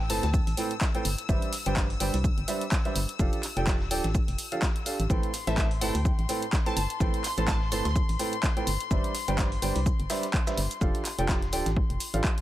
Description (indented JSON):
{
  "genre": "piano house",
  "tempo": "126 BPM",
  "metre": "4/4",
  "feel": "swing 57% on 16ths",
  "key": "A minor",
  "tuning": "A4 = 437 Hz",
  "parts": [
    { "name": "rich chamber string section", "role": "sustained chords", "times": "0.0-12.4 s", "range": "C6 to E6", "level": "-38 LUFS", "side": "left 9 dB", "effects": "vintage 12-bit sampler grit, sidechain pumping" },
    { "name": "organ-like FM bass", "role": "bass", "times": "0.0-12.2 s", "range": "D1 to D2", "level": "-30 LUFS", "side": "equal", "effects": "sidechain pumping" },
    { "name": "dusty soul sampler-style drum kit", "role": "drums", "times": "0.0-12.4 s", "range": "hi-hat, shaker, snare drum", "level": "-41 LUFS", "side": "right 4 dB", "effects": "high-pass filter on snare, sidechain pumping on perc, high-pass filter on perc, sidechain pumping on hats, high-pass filter on hats" },
    { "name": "glassy wavetable pluck", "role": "melody", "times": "0.1-0.3, 5.5-7.9 s", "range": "E5 to C6", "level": "-37 LUFS", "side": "equal", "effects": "chorus, dub echo" },
    { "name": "clear upright piano", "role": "riff", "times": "0.1-12.2 s", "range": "A2 to A5", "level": "-32 LUFS", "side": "right 2 dB", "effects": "sidechain pumping" },
    { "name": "punchy analog drum machine", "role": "drums", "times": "0.1-12.4 s", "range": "handclaps, hi-hat", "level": "-33 LUFS", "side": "equal", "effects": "none" },
    { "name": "electronic kick drum", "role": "drums", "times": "0.3-12.3 s", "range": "none", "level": "-27 LUFS", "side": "equal", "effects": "none" }
  ],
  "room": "little or no reverb",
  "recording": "none",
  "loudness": "-25 LUFS",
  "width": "side -14 dB against mid",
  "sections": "0.0-12.4 A section",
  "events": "none",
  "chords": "0.0 Am9; 1.3 Cmaj9/G; 3.2 F69; 5.1 Am9; 8.9 Cmaj9/G; 10.8 F69"
}